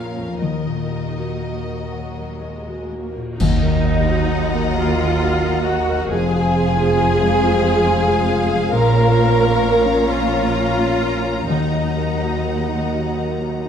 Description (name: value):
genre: cinematic, emotional film score for orchestra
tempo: 40-47 BPM (dotted quarters)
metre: 6/8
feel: rubato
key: Eb dorian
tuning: A4 = 440 Hz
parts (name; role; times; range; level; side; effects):
- rich studio violin section; melody; 0.0-13.7 s; Eb5 to Bb5; -31 LUFS; left 4 dB; none
- warm symphonic violin section; second line; 0.0-13.7 s; F4 to Gb5; -27 LUFS; left 6 dB; none
- rich symphonic viola section; accompaniment; 0.0-13.7 s; Eb3 to Bb4; -22 LUFS; right 1 dB; none
- warm concert grand piano; accompaniment; 0.0-13.7 s; Bb1 to Gb5; -22 LUFS; left 2 dB; none
- rich studio cello section; bass; 0.0-13.7 s; Eb2 to Bb2; -25 LUFS; right 4 dB; none
- cymbal swell, clash cymbals and concert bass drum; percussion; 0.4-5.2 s; none; -25 LUFS; equal; none
- mellow silver concert flute; second line; 3.4-13.7 s; Eb5 to Bb5; -26 LUFS; left 2 dB; none
- mellow French horn section; sustained chords; 3.4-13.7 s; F3 to Db4; -29 LUFS; left 3 dB; none
- clear symphonic double bass section; bass; 3.4-13.7 s; F1 to Eb2; -24 LUFS; right 4 dB; none
room: moderate scoring stage reverb, RT60 1.6 s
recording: dark, warm production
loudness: -16 LUFS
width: side -8 dB against mid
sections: 0.0-3.4 A section; 3.4-13.7 A section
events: band accent 3.4-4.3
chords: 0.4 Ebm; 6.1 Fm; 8.7 Bbm; 11.5 Ebm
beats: | 0.41 1.92 | 3.40 4.77 | 6.10 7.42 | 8.72 10.07 | 11.49 12.93